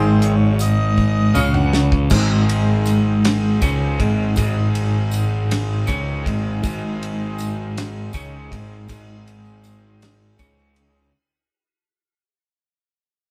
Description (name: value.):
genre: psychedelic rock.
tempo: 53 BPM (dotted quarters).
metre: 6/8.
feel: straight.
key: Ab major.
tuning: A4 = 445 Hz.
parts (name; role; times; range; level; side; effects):
hand-pumped harmonium; sustained chords; 0.0-11.1 s; Eb3 to Gb5; -30 LUFS; equal; none.
twelve-string electric guitar; riff; 0.0-11.1 s; Ab2 to Db3; -22 LUFS; equal; harmonic tremolo.
fuzz picked electric bass; bass; 0.0-11.1 s; Ab1 to Db2; -24 LUFS; equal; overdrive.
tambourine; percussion; 0.0-11.1 s; none; -40 LUFS; equal; none.
damped 70s drum kit; drums; 0.2-10.9 s; crash cymbal, hi-hat, kick drum, ride cymbal, snare drum, toms; -27 LUFS; equal; none.
room: light reverb.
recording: band playing live in one room.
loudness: -19 LUFS.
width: mono.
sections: 0.0-2.1 A section; 2.1-11.1 B section.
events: harmonium solo 0.0-2.1; drum fill 1.0-2.1; fade-out 2.1-11.1.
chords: 0.0 Ab.